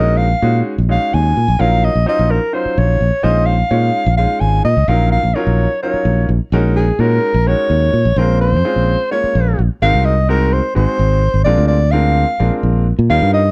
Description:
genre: jazz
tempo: 256 BPM (eighths)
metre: 7/8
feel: straight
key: Bb minor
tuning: A4 = 441 Hz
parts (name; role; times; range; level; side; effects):
- breathy soprano saxophone; melody; 0.0-13.5 s; Ab4 to Ab5; -19 LUFS; equal; slapback echo
- clear grand piano; accompaniment; 0.0-13.4 s; Gb3 to Db5; -24 LUFS; equal; none
- fingered electric bass; bass; 0.0-13.5 s; Ab1 to Bb2; -16 LUFS; equal; none
room: little or no reverb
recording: dry, close 1970s-style studio recording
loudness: -15 LUFS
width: mono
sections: 0.0-9.8 A section; 9.8-13.5 B section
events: none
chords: 0.0 Gb69/Bb; 1.6 Ebm9/Bb; 3.2 Bbm11; 4.9 Ebm9/Bb; 6.5 Gb69/Bb; 8.2 Bbm9; 9.8 Ab9; 11.5 Bb7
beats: 0.19 0.42 0.66 0.89 1.13 1.36 | 1.60 1.83 2.07 2.30 2.54 2.77 3.00 | 3.24 3.48 3.71 3.94 4.18 4.42 4.65 | 4.88 5.12 5.35 5.59 5.82 6.06 6.29 | 6.53 6.76 7.00 7.23 7.47 7.70 7.94 | 8.17 8.41 8.64 8.88 9.11 9.35 9.58 | 9.82 10.05 10.29 10.52 10.76 10.99 11.22 | 11.46 11.69 11.93 12.16 12.40 12.63 12.87 | 13.10 13.34

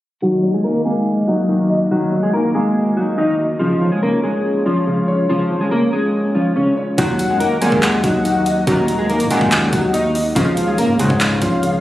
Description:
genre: hip hop, trap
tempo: 142 BPM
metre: 4/4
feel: half-time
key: Eb minor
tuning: A4 = 442 Hz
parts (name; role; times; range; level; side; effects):
- mellow electric guitar; melody; 0.2-11.8 s; F3 to Eb5; -17 LUFS; equal; analog chorus, low-pass filter, tape echo
- dark grand piano; accompaniment; 0.2-11.8 s; Db3 to Eb5; -22 LUFS; left 1 dB; low-pass filter
- glass harmonica; sustained chords; 0.2-11.8 s; Ab3 to Eb5; -23 LUFS; equal; low-pass filter
- soft octave-layered synth lead; second line; 7.0-11.8 s; F5 to Bb5; -23 LUFS; left 2 dB; chorus, tape echo
- chorused polysynth; stabs; 7.0-11.4 s; F2 to Eb3; -21 LUFS; equal; none
- hard-hitting 808-style bass; bass; 7.0-11.8 s; Db2 to Bb2; -26 LUFS; equal; none
- trap drum kit; drums; 7.0-11.7 s; handclaps, hi-hat, kick drum; -22 LUFS; equal; none
room: light reverb, digital ambience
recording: recorded on a phone in the room, studio reverb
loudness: -14 LUFS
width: side -14 dB against mid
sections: 0.2-7.0 A section; 7.0-11.8 B section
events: filter sweep 0.2-7.0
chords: 0.2 Ebm; 3.6 Db; 7.0 Ebm; 10.4 Db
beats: | 0.22 0.64 1.07 1.49 | 1.91 2.33 2.76 3.18 | 3.60 4.02 4.45 4.87 | 5.29 5.71 6.14 6.56 | 6.98 7.40 7.83 8.25 | 8.67 9.09 9.52 9.94 | 10.36 10.79 11.21 11.63

